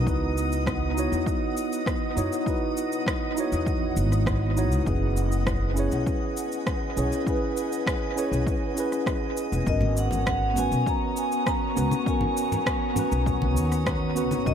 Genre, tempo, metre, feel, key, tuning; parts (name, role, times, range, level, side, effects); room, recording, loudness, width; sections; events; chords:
sunset chillout; 100 BPM; 4/4; straight; G# minor; A4 = 440 Hz
mellow tine electric piano; accompaniment; 0.0-14.5 s; B3 to C#5; -28 LUFS; equal; auto-pan, tape echo
ethereal airy pad; sustained chords; 0.0-14.5 s; B3 to D#6; -33 LUFS; equal; ensemble chorus, built-in reverb, tremolo
upright bass; bass; 0.0-14.5 s; E1 to F#2; -26 LUFS; equal; tube saturation
drifting glass-harmonics texture; texture; 0.0-14.5 s; C#5 to D#6; -37 LUFS; right 4 dB; chorus, built-in reverb
electronic kick drum; drums; 0.1-14.5 s; -29 LUFS; equal; overdrive
electronic shaker and rim click; drums; 0.1-14.5 s; -34 LUFS; equal; overdrive, dub echo
vibraphone with medium hard mallets; melody; 9.7-14.5 s; D#5 to A#5; -29 LUFS; moving between left 10 dB and right 2 dB; auto-pan, tape echo
congas; percussion; 9.8-14.4 s; -32 LUFS; left 1 dB; dub echo
light reverb; echo-heavy mix; -23 LUFS; side -8 dB against mid
0.0-14.5 A section
0.1 C#m11; 4.9 F#9sus4; 9.7 G#m11